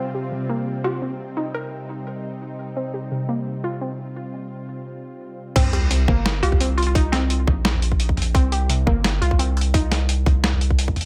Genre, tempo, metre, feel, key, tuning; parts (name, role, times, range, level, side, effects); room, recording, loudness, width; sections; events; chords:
half-time drum and bass; 172 BPM; 4/4; swing 53% on 16ths, half-time; C minor; A4 = 441 Hz
bowed-like drone; sustained chords; 0.0-5.6 s; C3 to F4; -33 LUFS; equal; built-in reverb, sidechain pumping
warbly dusty pluck; arpeggios; 0.0-10.4 s; C3 to G4; -30 LUFS; equal; chorus, tape echo
hollow square pluck; melody; 0.8-2.0, 6.4-7.5 s; C4 to Bb4; -31 LUFS; equal; lush chorus, tape echo
long sustained 808-style bass; bass; 5.6-10.9 s; G1 to C2; -23 LUFS; equal
boom bap sampler-style drum kit; drums; 5.6-11.1 s; crash cymbal, hi-hat, snare drum, toms; -27 LUFS; equal
electronic kick drum; drums; 5.6-10.9 s; -21 LUFS; equal
sub drop; sound effects; 5.6-7.0 s; -30 LUFS; equal
digital ambience; -21 LUFS; mono
0.0-5.6 A section; 5.6-11.1 B section
filter sweep on synth pluck 0.0-5.6; break 4.2-5.6; drop 5.6-11.1; impact 5.6-7.0
0.0 Cm